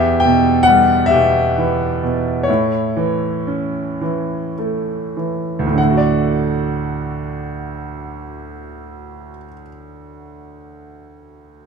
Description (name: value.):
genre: classical, lyrical solo piano.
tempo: 32-46 BPM (dotted quarters).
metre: 6/8.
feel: rubato.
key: D major.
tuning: A4 = 443 Hz.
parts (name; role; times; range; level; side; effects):
clear grand piano; solo; 0.0-11.7 s; D2 to G5; -16 LUFS; equal; none.
room: little or no reverb.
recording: close, detailed microphones.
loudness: -15 LUFS.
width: side -6 dB against mid.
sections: 0.0-5.8 A section; 5.8-9.4 B section.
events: slowing down 0.0-5.8.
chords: 0.0 Em; 2.5 A; 5.8 D.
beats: 1.11 | 2.48 4.01 | 5.78 7.60.